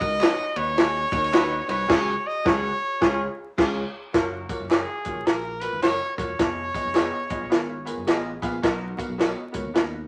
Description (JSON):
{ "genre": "uptempo 1960s-style soul", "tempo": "107 BPM", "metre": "4/4", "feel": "swing 62% on 8ths", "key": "F# major", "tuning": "A4 = 436 Hz", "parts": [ { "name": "bright trumpet", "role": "melody", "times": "0.0-8.4 s", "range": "G#4 to D#5", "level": "-29 LUFS", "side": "equal", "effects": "none" }, { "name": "bright upright piano", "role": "accompaniment", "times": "0.0-10.0 s", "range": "A#3 to F5", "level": "-34 LUFS", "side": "equal", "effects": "none" }, { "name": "modern bright fingered electric bass", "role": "bass", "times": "0.0-10.1 s", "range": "D#1 to D#2", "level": "-37 LUFS", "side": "equal", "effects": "none" }, { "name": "compact cocktail drum kit", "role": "drums", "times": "0.0-9.9 s", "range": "crash cymbal, hi-hat, kick drum, ride cymbal, snare drum", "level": "-25 LUFS", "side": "equal", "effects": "none" }, { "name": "tambourine and handclaps", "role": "percussion", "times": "0.0-9.9 s", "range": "none", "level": "-42 LUFS", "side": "equal", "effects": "none" }, { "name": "electric guitar through a small old amp", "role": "stabs", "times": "0.2-9.3 s", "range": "E#4 to D#5", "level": "-36 LUFS", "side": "equal", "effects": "none" }, { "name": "warm horn section", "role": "second line", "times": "1.9-4.6, 8.6-9.1 s", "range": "A#3 to A#4", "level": "-35 LUFS", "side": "equal", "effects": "none" } ], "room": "moderate studio reverb, RT60 0.6 s", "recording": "vinyl crackle", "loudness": "-24 LUFS", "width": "mono", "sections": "0.0-4.1 A section; 4.1-10.1 B section", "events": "band accent 1.9-4.1", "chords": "0.0 B; 1.9 C#sus4; 3.0 C#; 4.1 F#maj7; 6.4 Fm7b5; 8.6 Bmaj7" }